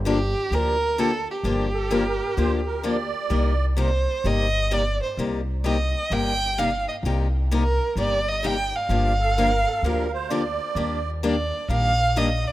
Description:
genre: acoustic string swing (jazz manouche)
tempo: 129 BPM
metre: 4/4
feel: swing 63% on 8ths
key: G minor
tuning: A4 = 443 Hz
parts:
  - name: upright bass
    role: bass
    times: 0.0-12.4 s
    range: G1 to Eb2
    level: -25 LUFS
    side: equal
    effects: none
  - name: warm violin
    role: melody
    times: 0.1-12.5 s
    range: G4 to G5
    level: -25 LUFS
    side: right 2 dB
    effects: none
  - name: picked steel-string acoustic guitar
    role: accompaniment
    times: 0.1-12.3 s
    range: C3 to G4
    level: -27 LUFS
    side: left 4 dB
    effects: none
  - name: musette accordion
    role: second line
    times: 1.7-3.7, 9.2-11.1 s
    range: A4 to D5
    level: -30 LUFS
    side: right 6 dB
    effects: none
room: light reverb, small room ambience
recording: rough home demo mix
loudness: -21 LUFS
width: side -15 dB against mid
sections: 0.0-12.5 A section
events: none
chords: 0.0 Gm7; 3.3 Cm7; 8.9 Gm7; 10.8 Ebmaj7

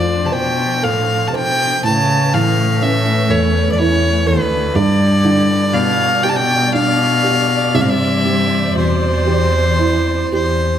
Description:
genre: celtic folk, Celtic slow air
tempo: 56-63 BPM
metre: 3/4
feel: rubato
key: D dorian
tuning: A4 = 443 Hz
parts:
  - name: bright fiddle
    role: melody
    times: 0.0-10.8 s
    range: B4 to A5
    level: -17 LUFS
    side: equal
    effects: none
  - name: warm cello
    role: second line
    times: 0.0-10.8 s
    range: D2 to C#3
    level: -17 LUFS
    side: left 2 dB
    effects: none
  - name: dark upright piano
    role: accompaniment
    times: 0.0-10.8 s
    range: G2 to C5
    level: -20 LUFS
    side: right 4 dB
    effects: none
  - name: warm studio string section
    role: sustained chords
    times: 0.0-10.8 s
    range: E3 to D5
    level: -24 LUFS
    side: left 1 dB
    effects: none
room: wet recital hall reverb, RT60 1.6 s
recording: recorded in a church or concert hall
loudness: -13 LUFS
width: side -10 dB against mid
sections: 0.0-10.8 A section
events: none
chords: 0.0 Dm7; 1.8 Aadd9; 4.7 G; 7.7 Cmaj7

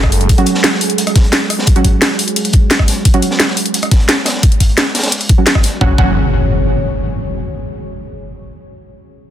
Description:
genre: dark technical drum and bass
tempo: 174 BPM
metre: 4/4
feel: straight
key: unclear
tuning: A4 = 440 Hz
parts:
  - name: deep dark ambient pad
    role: sustained chords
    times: 0.0-6.0 s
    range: F#4 to C#5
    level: -22 LUFS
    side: right 2 dB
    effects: chorus, built-in reverb, sidechain pumping
  - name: snarling distorted saw bass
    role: bass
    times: 0.0-0.3, 5.8-6.1 s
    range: F#1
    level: -17 LUFS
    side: equal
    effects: distortion, overdrive, sidechain pumping
  - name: drum and bass drum kit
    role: drums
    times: 0.0-5.7 s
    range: hi-hat, rim click, snare drum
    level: -14 LUFS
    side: equal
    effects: none
  - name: electronic kick drum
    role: drums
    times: 0.0-6.1 s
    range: none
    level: -10 LUFS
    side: equal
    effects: none
  - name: crunchy breakbeat drum kit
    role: drums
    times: 0.1-5.7 s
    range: hi-hat, snare drum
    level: -21 LUFS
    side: equal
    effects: high-pass filter on hats, high-pass filter on snare, high-pass filter on room
  - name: orchestra-hit-like synth stab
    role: stabs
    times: 0.4-3.2, 5.4-6.1 s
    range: F#3 to F#4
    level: -19 LUFS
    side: right 3 dB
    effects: built-in reverb, cassette tape, ping-pong delay
  - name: impact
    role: sound effects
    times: 5.8-7.2 s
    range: none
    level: -17 LUFS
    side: equal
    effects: none
room: light reverb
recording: dense, heavily limited modern master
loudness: -10 LUFS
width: side -11 dB against mid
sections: 0.0-5.8 A section; 5.8-7.2 B section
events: filter sweep on ambient pad 0.0-5.8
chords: 0.0 F#sus2

